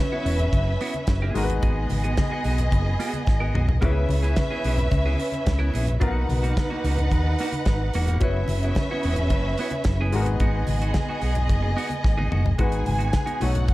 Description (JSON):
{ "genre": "disco", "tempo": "109 BPM", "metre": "4/4", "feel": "straight", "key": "unclear", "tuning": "A4 = 440 Hz", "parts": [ { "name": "warm studio string section", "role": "second line", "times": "0.0-13.7 s", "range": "B3 to G#5", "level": "-28 LUFS", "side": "right 1 dB", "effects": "none" }, { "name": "clean electric guitar", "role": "accompaniment", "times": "0.0-13.7 s", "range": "A#3 to A#4", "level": "-33 LUFS", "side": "right 3 dB", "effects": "none" }, { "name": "clear grand piano", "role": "accompaniment", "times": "0.0-13.7 s", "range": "B2 to C#5", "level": "-32 LUFS", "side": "left 4 dB", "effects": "none" }, { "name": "overdriven fingered electric bass", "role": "bass", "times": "0.3-13.7 s", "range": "E1 to D#2", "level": "-23 LUFS", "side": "equal", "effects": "none" }, { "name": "damped 70s drum kit", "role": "drums", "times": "0.3-13.7 s", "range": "hi-hat, kick drum, snare drum, toms", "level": "-25 LUFS", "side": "equal", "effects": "none" }, { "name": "congas", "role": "percussion", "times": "0.3-13.7 s", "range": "none", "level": "-33 LUFS", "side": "left 2 dB", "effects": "none" } ], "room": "small room ambience", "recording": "none", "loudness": "-21 LUFS", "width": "side -18 dB against mid", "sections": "0.0-12.6 A section; 12.6-13.7 B section", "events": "drum fill 3.3-3.8, 12.1-12.6", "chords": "0.0 F#7sus4; 1.4 G#m7; 3.8 C#m7; 6.0 Bmaj7; 8.2 F#7sus4; 10.1 G#m7", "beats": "0.53 1.08 | 1.63 2.18 2.73 3.28 | 3.83 4.38 4.93 5.47 | 6.02 6.57 7.12 7.67 | 8.22 8.77 9.31 9.86 | 10.41 10.96 11.51 12.05 | 12.60 13.15 13.70" }